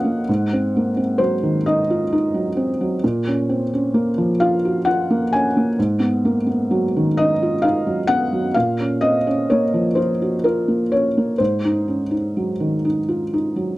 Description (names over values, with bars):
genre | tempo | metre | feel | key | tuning
neoclassical minimalist piano | 43 BPM (dotted quarters) | 6/8 | uneven beats, rubato | unclear | A4 = 440 Hz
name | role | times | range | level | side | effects
felt-muted upright piano | solo | 0.0-13.8 s | Ab2 to Ab5 | -17 LUFS | equal | none
room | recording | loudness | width
little or no reverb | dry, close 1970s-style studio recording | -17 LUFS | side -18 dB against mid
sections
0.0-13.8 A section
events
none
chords
0.3 Ab7; 3.0 Bbm; 5.8 Abm7; 8.5 Bbm; 11.4 Ab7